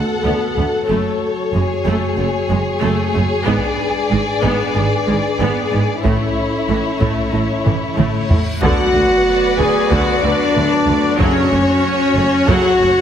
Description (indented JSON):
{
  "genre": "cinematic, epic orchestral film score",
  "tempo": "93 BPM",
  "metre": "4/4",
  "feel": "straight",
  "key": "unclear",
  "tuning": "A4 = 438 Hz",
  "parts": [
    { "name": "warm symphonic violin section", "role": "melody", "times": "0.0-13.0 s", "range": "C#5 to G#5", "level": "-25 LUFS", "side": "left 4 dB", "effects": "none" },
    { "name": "warm symphonic violin section", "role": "second line", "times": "0.0-13.0 s", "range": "E4 to D5", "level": "-22 LUFS", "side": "left 3 dB", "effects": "none" },
    { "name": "dark French horn section", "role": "sustained chords", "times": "0.0-13.0 s", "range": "F#3 to B4", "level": "-20 LUFS", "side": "left 1 dB", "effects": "none" },
    { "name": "rich symphonic cello section", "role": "bass", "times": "0.0-12.9 s", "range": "D2 to A2", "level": "-23 LUFS", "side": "right 3 dB", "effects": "none" },
    { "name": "clear symphonic viola section", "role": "accompaniment", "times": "0.2-13.0 s", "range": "D3 to F#4", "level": "-24 LUFS", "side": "equal", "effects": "none" },
    { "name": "rich symphonic double bass section", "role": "bass", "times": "0.2-12.9 s", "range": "F#1 to D2", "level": "-22 LUFS", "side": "right 3 dB", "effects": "none" },
    { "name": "taiko ensemble", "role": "drums", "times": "3.5-13.0 s", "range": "none", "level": "-21 LUFS", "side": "equal", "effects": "none" },
    { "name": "reverse cymbal and sub drop", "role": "sound effects", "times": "8.1-11.2 s", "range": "none", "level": "-29 LUFS", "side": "equal", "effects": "none" },
    { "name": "chamber organ, principal", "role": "sustained chords", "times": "8.6-13.0 s", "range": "F#3 to D5", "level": "-25 LUFS", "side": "right 2 dB", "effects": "none" },
    { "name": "warm trombone section", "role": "sustained chords", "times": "8.6-12.7 s", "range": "C#3 to B3", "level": "-28 LUFS", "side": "right 4 dB", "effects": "none" },
    { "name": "clear trumpet section", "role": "stabs", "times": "8.6-13.0 s", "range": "C#4 to G#4", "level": "-21 LUFS", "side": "equal", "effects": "none" },
    { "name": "timpani", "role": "percussion", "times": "11.2-12.1 s", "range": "F#2", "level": "-24 LUFS", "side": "equal", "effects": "none" }
  ],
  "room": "moderate scoring stage reverb, RT60 1.9 s",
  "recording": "heavily compressed radio sound, multiband compression",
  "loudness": "-14 LUFS",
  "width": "side -9 dB against mid",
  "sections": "0.0-8.6 A section; 8.6-13.0 B section",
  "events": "drum fill 7.7-8.6; reverse cymbal 8.1-8.6; impact 8.6-11.2",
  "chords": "0.0 D6; 0.9 F#madd9; 3.5 G#dim; 6.1 A; 8.6 D6; 11.2 F#m",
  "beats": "0.26 | 0.90 1.55 2.19 2.84 | 3.48 4.12 4.77 5.41 | 6.05 6.70 7.34 7.98 | 8.62 9.27 9.91 10.55 | 11.19 11.84 12.48"
}